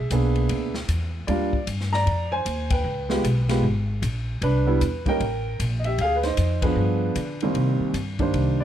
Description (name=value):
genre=jazz piano trio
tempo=153 BPM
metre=4/4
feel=swing 64% on 8ths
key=C minor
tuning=A4 = 439 Hz
part: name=warm baby grand piano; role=melody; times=0.0-8.6 s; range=C2 to Bb5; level=-24 LUFS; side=right 2 dB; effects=none
part: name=upright bass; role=bass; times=0.0-8.6 s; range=Ab1 to D3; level=-24 LUFS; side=equal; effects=none
part: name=swinging big-band drum kit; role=drums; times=0.1-8.5 s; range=hi-hat, kick drum, ride cymbal, snare drum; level=-31 LUFS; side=left 2 dB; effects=none
room=little or no reverb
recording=dark, warm production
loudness=-21 LUFS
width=side -10 dB against mid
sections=0.0-7.6 A section; 7.6-8.6 B section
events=band accent 2.7, 6.6; grand piano solo 7.6-8.6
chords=0.0 E7#11; 1.3 Ebmaj9; 2.9 Db7(no3); 4.4 Cmaj9; 5.2 Gmadd9/A; 6.0 Dm7b5; 6.8 G7b9; 7.6 Cm9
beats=0.11 0.51 0.90 | 1.29 1.68 2.07 2.46 | 2.85 3.25 3.64 4.03 | 4.42 4.81 5.20 5.60 | 5.99 6.38 6.77 7.16 | 7.55 7.95 8.34